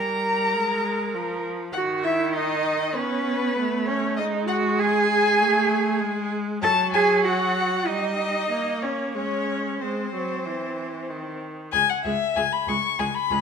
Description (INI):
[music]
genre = quick classical-period movement for string quartet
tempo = 97 BPM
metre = 4/4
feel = rubato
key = C# minor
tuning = A4 = 440 Hz
[part]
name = warm violin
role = melody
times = 0.0-13.4 s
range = B4 to C#6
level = -28 LUFS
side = left 9 dB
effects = none
[part]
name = warm violin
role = second line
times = 0.0-13.4 s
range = G#4 to Bb5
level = -28 LUFS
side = left 3 dB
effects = none
[part]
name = clear viola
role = accompaniment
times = 0.0-13.4 s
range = D#3 to C#4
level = -28 LUFS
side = right 1 dB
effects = none
[part]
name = rich cello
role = bass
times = 0.0-13.4 s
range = C#2 to Bb4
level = -25 LUFS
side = right 4 dB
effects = none
[sound]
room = moderate recital hall reverb, RT60 1.5 s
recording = none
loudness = -21 LUFS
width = side -6 dB against mid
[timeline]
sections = 0.0-11.7 A section; 11.7-13.4 B section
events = none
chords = 0.0 Gm; 0.5 Fmadd11; 1.7 D#m; 3.0 Aadd9; 4.2 G#5; 5.4 N.C.; 6.6 F#madd9; 7.9 Gdim; 9.2 G#; 11.7 C#5